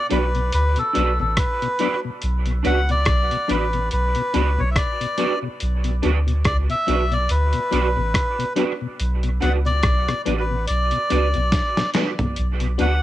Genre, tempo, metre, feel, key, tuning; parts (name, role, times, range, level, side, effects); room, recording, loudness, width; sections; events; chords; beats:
dub reggae; 71 BPM; 4/4; swing 58% on 16ths; B minor; A4 = 441 Hz
melodica; melody; 0.0-13.0 s; A4 to F#5; -24 LUFS; equal; cassette tape, dub echo, plate reverb
clean electric guitar; accompaniment; 0.1-12.9 s; D4 to D5; -28 LUFS; right 8 dB; ensemble chorus, cassette tape, dub echo, plate reverb
mellow tonewheel organ; accompaniment; 0.1-12.9 s; B2 to D4; -27 LUFS; left 7 dB; slow rotary speaker, cassette tape
soft dub sub bass; bass; 0.1-13.0 s; A1 to D2; -21 LUFS; equal
dusty soul sampler-style drum kit; drums; 0.1-13.0 s; hi-hat, kick drum, rim click, snare drum, toms; -24 LUFS; equal; cassette tape
light reverb; home recording on cassette; -18 LUFS; side -14 dB against mid
0.0-13.0 A section
drum fill 11.5-12.4
0.0 Bm
0.52 1.37 | 2.22 3.06 3.91 4.76 | 5.60 6.45 7.30 8.14 | 8.99 9.83 10.68 11.52 | 12.37